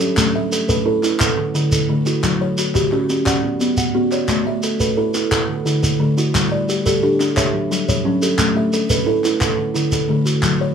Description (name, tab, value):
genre	southern african traditional, mbira-style interlocking cycle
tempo	117 BPM (dotted quarters)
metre	12/8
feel	straight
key	unclear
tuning	A4 = 440 Hz
part	buzzing kalimba	arpeggios	0.0-10.7 s	D3 to F#5	-20 LUFS	left 3 dB	none
part	kalimba	arpeggios	0.0-10.7 s	D3 to F#5	-20 LUFS	right 4 dB	none
part	shekere	percussion	0.0-10.6 s	none	-22 LUFS	right 1 dB	none
part	group handclap	percussion	0.2-10.6 s	none	-25 LUFS	left 2 dB	none
room	light reverb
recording	minimal, uncompressed stereo recording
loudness	-16 LUFS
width	side -7 dB against mid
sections	0.0-10.7 A section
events	none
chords	0.2 A5; 1.2 D; 2.2 F#5; 3.3 Bm; 4.3 A; 5.3 D; 6.3 G5; 7.4 F#m; 8.4 A5; 9.4 D